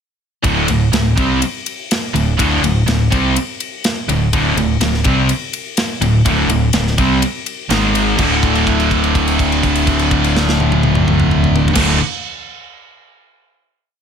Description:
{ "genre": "hard rock", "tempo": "124 BPM", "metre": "4/4", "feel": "straight", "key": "unclear", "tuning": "A4 = 440 Hz", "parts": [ { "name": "high-gain distorted guitar", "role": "riff", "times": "0.4-12.0 s", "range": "D2 to C4", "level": "-20 LUFS", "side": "equal", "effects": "distortion" }, { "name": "overdriven electric guitar", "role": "riff", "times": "0.4-12.0 s", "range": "D2 to C4", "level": "-19 LUFS", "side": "right 8 dB", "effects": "none" }, { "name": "sludgy distorted guitar", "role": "riff", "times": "0.4-12.0 s", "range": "D2 to C4", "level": "-18 LUFS", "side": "left 8 dB", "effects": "overdrive" }, { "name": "overdriven fingered electric bass", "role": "bass", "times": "0.4-12.0 s", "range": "D1 to C2", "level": "-19 LUFS", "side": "equal", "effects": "none" }, { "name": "tight metal drum kit", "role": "drums", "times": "0.4-11.9 s", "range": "crash cymbal, kick drum, ride cymbal, snare drum, toms", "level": "-19 LUFS", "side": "equal", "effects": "none" } ], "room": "light reverb, studio ambience", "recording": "none", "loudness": "-13 LUFS", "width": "side -7 dB against mid", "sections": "0.4-8.2 riff; 8.2-12.1 final chord", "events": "held note 8.2-11.8", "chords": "0.4 D5; 7.7 G#5; 8.2 D5", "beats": "| 0.44 0.93 1.41 1.90 | 2.38 2.87 3.35 3.84 | 4.32 4.80 5.29 5.77 | 6.25 6.73 7.22 7.70 | 8.18 8.66 9.15 9.63 | 10.11 10.60 11.08 11.57" }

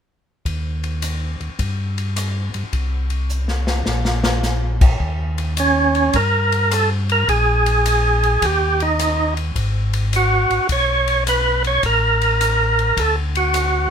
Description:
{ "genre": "soul jazz organ trio", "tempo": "105 BPM", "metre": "4/4", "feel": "swing 67% on 8ths", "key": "Eb mixolydian", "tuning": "A4 = 440 Hz", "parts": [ { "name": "mellow tonewheel organ", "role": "bass", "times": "0.5-13.9 s", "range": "Ab1 to G2", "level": "-20 LUFS", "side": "equal", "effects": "slow rotary speaker" }, { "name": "swinging big-band drum kit", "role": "drums", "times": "0.5-13.7 s", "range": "crash cymbal, hi-hat, kick drum, ride cymbal, rim click, snare drum", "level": "-24 LUFS", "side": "left 2 dB", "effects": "none" }, { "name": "percussive tonewheel organ", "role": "melody", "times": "5.6-13.9 s", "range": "Db4 to Db5", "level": "-16 LUFS", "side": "right 2 dB", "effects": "overdrive, fast rotary speaker" } ], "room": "moderate studio ambience, RT60 0.5 s", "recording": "minimal, uncompressed stereo recording", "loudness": "-16 LUFS", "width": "side -7 dB against mid", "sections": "0.5-5.0 A section; 5.0-13.9 B section", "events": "drum fill 3.3-4.4", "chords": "0.5 N.C.; 5.0 Eb7; 7.3 Absus2/Bb; 8.4 Eb; 9.6 Abm7; 11.8 N.C.; 13.0 D", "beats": "| 0.45 1.02 1.59 2.16 | 2.73 3.30 3.87 4.44 | 5.01 5.58 6.14 6.71 | 7.28 7.85 8.42 8.99 | 9.56 10.13 10.70 11.26 | 11.83 12.40 12.97 13.54" }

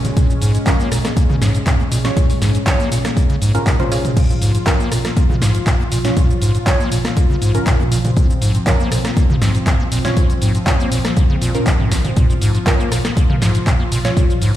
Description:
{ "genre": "acid house", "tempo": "120 BPM", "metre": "4/4", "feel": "straight", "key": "unclear", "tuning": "A4 = 441 Hz", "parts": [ { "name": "warm analog pad", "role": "sustained chords", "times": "0.0-14.6 s", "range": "F3 to F4", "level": "-25 LUFS", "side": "left 1 dB", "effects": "chorus, sidechain pumping" }, { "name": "acid bass, square", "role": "riff", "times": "0.0-14.5 s", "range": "Bb1 to Bb3", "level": "-18 LUFS", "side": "equal", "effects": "sidechain pumping, tape echo" }, { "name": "punchy analog drum machine", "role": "drums", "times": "0.0-14.5 s", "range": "cabasa, crash cymbal, handclaps, hi-hat, rim click, snare drum, toms", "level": "-22 LUFS", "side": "equal", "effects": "none" }, { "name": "electronic kick drum", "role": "drums", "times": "0.2-14.3 s", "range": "none", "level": "-16 LUFS", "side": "equal", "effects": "none" }, { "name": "filtered dub chord stab", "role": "stabs", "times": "0.7-14.2 s", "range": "Db4 to Db5", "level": "-24 LUFS", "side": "right 2 dB", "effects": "phaser, tape echo" } ], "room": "light reverb, digital ambience", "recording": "played on a big sound system in a bare room, large studio reverb", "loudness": "-13 LUFS", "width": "side -13 dB against mid", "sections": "0.0-14.6 A section", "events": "none", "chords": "0.0 Bbm", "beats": "| 0.17 0.67 1.17 1.67 | 2.17 2.67 3.17 3.67 | 4.17 4.67 5.17 5.67 | 6.17 6.67 7.17 7.67 | 8.17 8.67 9.17 9.67 | 10.17 10.67 11.17 11.67 | 12.17 12.67 13.17 13.67 | 14.17" }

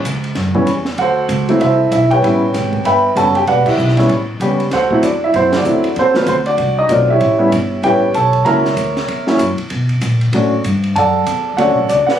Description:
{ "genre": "jazz piano trio", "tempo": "192 BPM", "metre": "4/4", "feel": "swing 61% on 8ths", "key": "unclear", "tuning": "A4 = 440 Hz", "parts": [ { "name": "upright bass", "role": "bass", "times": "0.0-12.1 s", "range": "E1 to B2", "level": "-19 LUFS", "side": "equal", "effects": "none" }, { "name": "compact cocktail drum kit", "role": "drums", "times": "0.1-12.1 s", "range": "crash cymbal, hi-hat, kick drum, ride cymbal, snare drum", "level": "-25 LUFS", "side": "left 1 dB", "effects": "none" }, { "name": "warm baby grand piano", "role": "melody", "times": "0.5-12.2 s", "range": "E3 to B5", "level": "-13 LUFS", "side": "right 1 dB", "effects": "none" } ], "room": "light reverb", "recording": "recorded on a phone in the room, studio reverb, compression", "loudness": "-12 LUFS", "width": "side -10 dB against mid", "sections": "0.0-12.2 A section", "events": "band accent 3.6, 5.5", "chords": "0.0 A (rootless); 1.0 D9; 2.2 A9; 3.5 Em7; 4.1 A9; 4.7 D9; 6.0 D#dim7; 7.2 A9; 8.5 F#7; 9.7 Bm7", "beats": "0.05 0.36 0.67 | 0.98 1.30 1.61 1.92 | 2.23 2.54 2.85 3.17 | 3.48 3.79 4.10 4.41 | 4.72 5.03 5.34 5.66 | 5.97 6.28 6.59 6.90 | 7.21 7.53 7.84 8.15 | 8.46 8.77 9.09 9.40 | 9.71 10.02 10.34 10.65 | 10.96 11.27 11.59 11.90" }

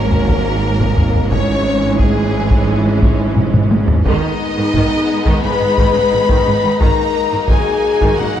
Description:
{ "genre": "cinematic, epic orchestral film score", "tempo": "87 BPM", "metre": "4/4", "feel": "straight", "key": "G# minor", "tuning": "A4 = 442 Hz", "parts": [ { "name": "rich symphonic violin section", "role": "melody", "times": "0.0-8.4 s", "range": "G#4 to B5", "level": "-22 LUFS", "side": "left 3 dB", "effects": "none" }, { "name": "warm symphonic violin section", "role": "second line", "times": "0.0-8.4 s", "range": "A#3 to D#4", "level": "-24 LUFS", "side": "left 2 dB", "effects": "none" }, { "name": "warm symphonic viola section", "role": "accompaniment", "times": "0.0-8.4 s", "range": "C#3 to G#3", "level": "-21 LUFS", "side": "right 1 dB", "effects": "none" }, { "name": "dark French horn section", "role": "sustained chords", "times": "0.0-8.4 s", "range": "G#3 to B4", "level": "-19 LUFS", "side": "left 3 dB", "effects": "none" }, { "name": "rich symphonic cello section", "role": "bass", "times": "0.0-8.4 s", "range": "G#2", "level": "-22 LUFS", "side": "right 2 dB", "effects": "none" }, { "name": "rich symphonic double bass section", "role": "bass", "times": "0.0-8.3 s", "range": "G#1", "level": "-21 LUFS", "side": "right 2 dB", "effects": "none" }, { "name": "taiko ensemble", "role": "drums", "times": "0.1-8.4 s", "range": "none", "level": "-16 LUFS", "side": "equal", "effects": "none" } ], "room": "moderate scoring stage reverb, RT60 1.7 s", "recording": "dark, warm production", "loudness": "-12 LUFS", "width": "side -10 dB against mid", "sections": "0.0-8.4 A section", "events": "drum fill 3.4-4.1", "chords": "0.0 F#/G#; 1.3 C#m/G#; 4.1 G#m; 6.8 D#m", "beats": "0.62 | 1.31 2.00 2.68 3.37 | 4.06 4.75 5.43 6.12 | 6.81 7.50 8.18" }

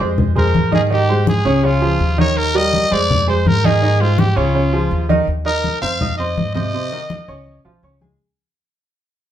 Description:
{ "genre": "latin, Cuban son and guajira", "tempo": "165 BPM", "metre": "4/4", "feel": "straight", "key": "unclear", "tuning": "A4 = 436 Hz", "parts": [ { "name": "clear baby grand piano", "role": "arpeggios", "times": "0.0-8.2 s", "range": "C3 to Eb6", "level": "-19 LUFS", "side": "right 3 dB", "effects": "none" }, { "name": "upright bass", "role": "bass", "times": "0.0-8.2 s", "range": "Cb2 to Ab2", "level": "-19 LUFS", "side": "equal", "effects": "none" }, { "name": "congas", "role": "percussion", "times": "0.2-8.2 s", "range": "none", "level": "-20 LUFS", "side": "left 2 dB", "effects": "none" }, { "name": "growling trumpet", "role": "melody", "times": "0.4-7.6 s", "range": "F4 to F5", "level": "-20 LUFS", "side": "equal", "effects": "slapback echo" } ], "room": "wet studio reverb, RT60 0.6 s", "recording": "heard from further back in the room", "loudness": "-14 LUFS", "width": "side -11 dB against mid", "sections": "0.0-5.3 A section; 5.3-8.2 B section", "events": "fade-out 5.3-8.2", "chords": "0.2 Fm7; 0.9 Ab; 1.6 Db; 2.4 Ebadd9; 3.1 Fm7; 3.8 Ab; 4.5 Db; 5.3 Ebsus2; 6.0 Fm7; 6.7 Dbsus2; 7.5 Db7", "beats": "0.18 0.55 | 0.91 1.27 1.64 2.00 | 2.37 2.73 3.09 3.46 | 3.82 4.18 4.55 4.91 | 5.28 5.64 6.01 6.37 | 6.74 7.10 7.46 7.83" }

